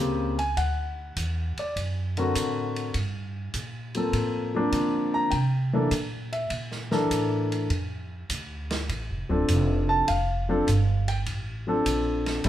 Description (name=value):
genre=jazz piano trio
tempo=101 BPM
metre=4/4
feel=swing 69% on 8ths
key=F major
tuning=A4 = 440 Hz
part: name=warm concert grand piano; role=melody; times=0.0-12.5 s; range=Db3 to Bb5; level=-26 LUFS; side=left 1 dB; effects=none
part: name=upright bass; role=bass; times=0.0-12.5 s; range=D1 to D3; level=-28 LUFS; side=right 1 dB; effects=none
part: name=vintage drum kit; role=drums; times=0.4-12.5 s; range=hi-hat, kick drum, ride cymbal, snare drum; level=-35 LUFS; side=right 2 dB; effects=none
room=moderate large studio reverb, RT60 1.1 s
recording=band playing live in one room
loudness=-24 LUFS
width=side -12 dB against mid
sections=0.0-12.5 A section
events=none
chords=0.0 Bbm9; 0.6 D7b13; 3.0 Gm11; 5.3 C13; 7.7 F6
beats=| 0.57 1.17 1.76 2.36 | 2.95 3.54 4.14 4.73 | 5.33 5.92 6.51 7.11 | 7.70 8.30 8.89 9.48 | 10.08 10.67 11.27 11.86 | 12.45